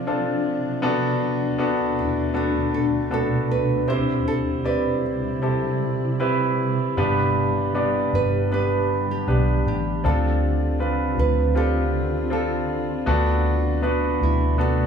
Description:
pop; 79 BPM; 4/4; straight; G major; A4 = 442 Hz
nylon-string guitar; melody; 0.0-14.9 s; E4 to C5; -29 LUFS; right 6 dB
bright grand piano; accompaniment; 0.0-14.9 s; G2 to D5; -23 LUFS; equal
granular cloud pad; sustained chords; 0.0-14.9 s; D2 to G4; -26 LUFS; equal; built-in reverb
vintage muted fingered electric bass; bass; 7.0-14.9 s; G1 to D2; -23 LUFS; equal
wet large studio reverb, RT60 0.8 s; band playing live in one room, small room ambience; -20 LUFS; side -7 dB against mid
0.0-14.9 A section
0.0 Dm7; 0.8 Bm7/D; 3.9 Cmaj7; 7.0 G; 10.0 Dm7; 13.1 Bm7/D
0.07 | 0.83 1.58 2.35 3.11 | 3.88 4.65 5.42 6.20 | 6.97 7.75 8.52 9.28 | 10.04 10.80 11.56 12.32 | 13.08 13.84 14.60

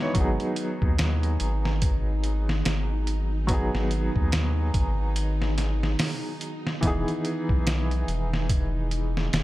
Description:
trip hop; 72 BPM; 4/4; swing 60% on 16ths; G# minor; A4 = 441 Hz
felt-muted upright piano; accompaniment; 0.0-9.4 s; E3 to C#5; -30 LUFS; right 1 dB; tremolo, tape echo
string machine, cellos; sustained chords; 0.0-9.4 s; G#3 to G#4; -36 LUFS; left 1 dB; ensemble chorus
trip hop sampler-style drum kit; drums; 0.1-9.4 s; hi-hat, kick drum, snare drum; -27 LUFS; equal
round analog bass; bass; 0.2-9.4 s; E1 to D#2; -26 LUFS; equal
digital ambience; -23 LUFS; side -16 dB against mid
0.0-9.4 A section
0.2 G#m7; 6.8 Emaj7
| 0.16 0.99 1.83 2.66 | 3.49 4.33 5.16 5.99 | 6.83 7.66 8.49 9.33

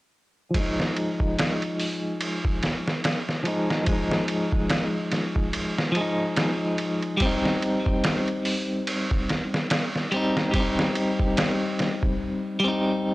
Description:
trip hop; 72 BPM; 4/4; swing 57% on 16ths; F minor; A4 = 440 Hz
clean electric guitar; accompaniment; 0.5-13.1 s; F3 to Eb4; -25 LUFS; equal; tremolo, vintage 12-bit sampler grit, low-pass filter, tape echo
trip hop sampler-style drum kit; drums; 0.5-12.2 s; hi-hat, kick drum, ride cymbal, snare drum; -26 LUFS; equal; vintage 12-bit sampler grit
light reverb; dry, gritty hardware recording, transformer saturation, cassette tape; -22 LUFS; side -19 dB against mid
0.5-13.1 A section
filter sweep on clean electric guitar 0.5-13.1
0.5 Fm7; 7.2 Eb6
| 0.55 1.38 2.21 3.05 | 3.88 4.71 5.55 6.38 | 7.21 8.05 8.88 9.71 | 10.55 11.38 12.21 13.05

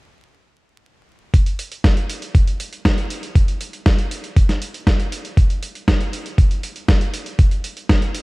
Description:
italo disco; 119 BPM; 4/4; straight
dusty soul sampler-style drum kit; drums; 1.3-8.2 s; hi-hat, snare drum; -23 LUFS; equal
electronic kick drum; drums; 1.3-8.0 s; -15 LUFS; equal
digital ambience; dark, warm production, vinyl crackle; -16 LUFS; side -24 dB against mid
1.3-8.2 A section
| 1.34 1.84 2.35 2.85 | 3.35 3.86 4.36 4.87 | 5.37 5.88 6.38 6.88 | 7.39 7.89

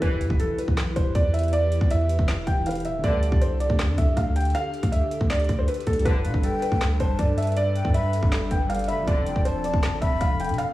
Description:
hip hop, trap; 159 BPM; 4/4; half-time; E phrygian; A4 = 440 Hz
felt-muted upright piano; melody; 0.0-10.7 s; A4 to G5; -28 LUFS; equal; low-pass filter, digital delay
dark grand piano; accompaniment; 0.0-10.7 s; D3 to D5; -34 LUFS; equal; low-pass filter
airy breathy pad; sustained chords; 0.5-10.7 s; D3 to B4; -32 LUFS; equal; chorus
clear brass ensemble; stabs; 0.0-0.3, 3.0-3.3, 6.1-6.3, 9.1-9.3 s; A1 to E3; -35 LUFS; equal
long sustained 808-style bass; bass; 0.0-10.6 s; D1 to C3; -25 LUFS; equal
trap drum kit; drums; 0.0-10.7 s; handclaps, hi-hat, kick drum, rim click, snare drum; -24 LUFS; equal
impact; sound effects; 0.2-1.5 s; -34 LUFS; equal
breathy jazz flute; second line; 6.2-10.6 s; F5 to B5; -32 LUFS; left 4 dB; digital delay
small room reverb; vinyl crackle, studio reverb; -21 LUFS; side -16 dB against mid
0.0-10.7 A section
impact 0.0-1.5
0.0 Em; 3.0 Dsus4; 6.1 Gadd9; 9.1 F6
| 0.02 0.40 0.77 1.15 | 1.53 1.91 2.28 2.66 | 3.04 3.42 3.79 4.17 | 4.55 4.92 5.30 5.68 | 6.06 6.43 6.81 7.19 | 7.57 7.94 8.32 8.70 | 9.07 9.45 9.83 10.21 | 10.59

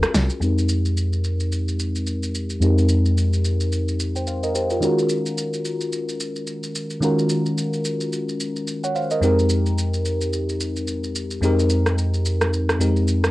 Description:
amapiano; 109 BPM; 4/4; swing 58% on 16ths; F minor; A4 = 440 Hz
bell-like FM electric piano; accompaniment; 0.0-13.3 s; F2 to G5; -20 LUFS; equal; chorus, phaser, low-pass filter, cassette tape
deep house drum kit; drums; 0.0-13.3 s; hi-hat, rim click, shaker, snare drum; -26 LUFS; equal; overdrive, cassette tape
light reverb; home recording on cassette; -19 LUFS; side -18 dB against mid
0.4-13.3 A section
filter sweep on FM electric piano 0.4-13.3
0.4 Fm11; 4.8 Ebm11; 9.2 Fm11
| 0.42 0.97 1.52 2.07 | 2.62 3.17 3.72 4.27 | 4.82 5.37 5.92 6.47 | 7.03 7.58 8.13 8.68 | 9.23 9.78 10.33 10.88 | 11.43 11.98 12.53 13.08

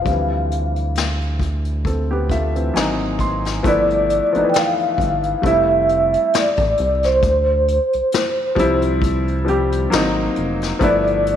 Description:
R&B, neo-soul; 67 BPM; 4/4; swing 55% on 16ths; D dorian; A4 = 440 Hz
vibraphone with soft mallets; melody; 0.0-11.4 s; C5 to G5; -18 LUFS; equal; low-pass filter, slapback echo
warm concert grand piano; accompaniment; 0.0-11.4 s; E3 to B#5; -21 LUFS; left 2 dB; low-pass filter
rubbery square bass; bass; 0.0-11.4 s; F1 to D2; -22 LUFS; right 1 dB
vintage brush drum kit; drums; 0.1-11.4 s; hi-hat, kick drum, snare drum; -23 LUFS; left 3 dB
moderate echo chamber reverb, RT60 2.3 s; 1960s-style stereo; -16 LUFS; side -9 dB against mid
0.0-3.6 A section; 3.6-11.4 B section
filter sweep 0.0-3.6; grand piano fill 1.9-3.6
0.1 Dm11; 2.7 G#9; 3.6 G13; 5.4 Fmaj9; 7.2 Dm11; 9.9 G#9; 10.8 G13
| 0.06 0.96 1.85 2.75 | 3.64 4.54 5.43 6.33 | 7.22 8.12 9.02 9.91 | 10.81

